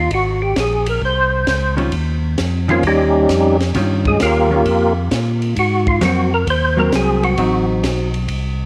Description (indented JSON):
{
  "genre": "soul jazz organ trio",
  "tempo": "132 BPM",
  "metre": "4/4",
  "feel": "swing 67% on 8ths",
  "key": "Eb mixolydian",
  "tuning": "A4 = 440 Hz",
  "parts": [
    { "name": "percussive tonewheel organ", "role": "melody", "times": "0.0-7.7 s", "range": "F3 to C5", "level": "-19 LUFS", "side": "equal", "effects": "slow rotary speaker, chorus vibrato" },
    { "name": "tonewheel organ", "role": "bass", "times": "0.0-8.7 s", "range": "Ab1 to Bb2", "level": "-21 LUFS", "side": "equal", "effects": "slow rotary speaker" },
    { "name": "compact cocktail drum kit", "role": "drums", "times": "0.1-8.4 s", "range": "hi-hat, kick drum, ride cymbal, snare drum", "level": "-27 LUFS", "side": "equal", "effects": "none" },
    { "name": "hollow-body jazz guitar", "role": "accompaniment", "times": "1.8-8.1 s", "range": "Eb3 to F4", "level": "-23 LUFS", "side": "equal", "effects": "none" }
  ],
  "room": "moderate echo chamber reverb, RT60 2.0 s, small room ambience",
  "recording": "none",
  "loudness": "-16 LUFS",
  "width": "mono",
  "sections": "0.0-8.7 A section",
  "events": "tonewheel organ solo 0.0-8.7",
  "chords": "0.1 Abadd9; 1.9 Eb9; 5.6 Ab9; 7.4 Adim7"
}